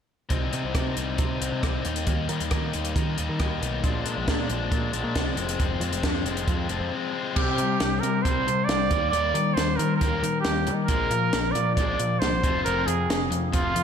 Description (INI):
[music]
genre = indie rock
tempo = 136 BPM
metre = 4/4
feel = straight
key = C minor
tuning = A4 = 440 Hz
[part]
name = biting overdriven guitar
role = riff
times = 0.3-13.8 s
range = F2 to Eb4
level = -28 LUFS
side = left 6 dB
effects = slapback echo
[part]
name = growling picked electric bass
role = bass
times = 0.3-13.8 s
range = F1 to Eb3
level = -30 LUFS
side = right 1 dB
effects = overdrive
[part]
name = compact cocktail drum kit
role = drums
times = 0.3-13.8 s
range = crash cymbal, hi-hat, kick drum, rim click, snare drum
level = -28 LUFS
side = equal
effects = none
[part]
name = clear trumpet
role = melody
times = 7.4-13.8 s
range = F4 to D5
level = -25 LUFS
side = right 3 dB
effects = slapback echo
[sound]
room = moderate lush hall reverb, RT60 1.7 s, small room ambience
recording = big arena sound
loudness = -23 LUFS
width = side -7 dB against mid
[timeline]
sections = 0.3-7.4 A section; 7.4-13.8 B section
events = break 6.9-7.4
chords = 0.3 Cm; 1.9 Eb; 3.8 Bb7; 5.4 Fm; 7.4 C5; 8.9 Ebmaj7; 10.9 Bb7; 12.4 F5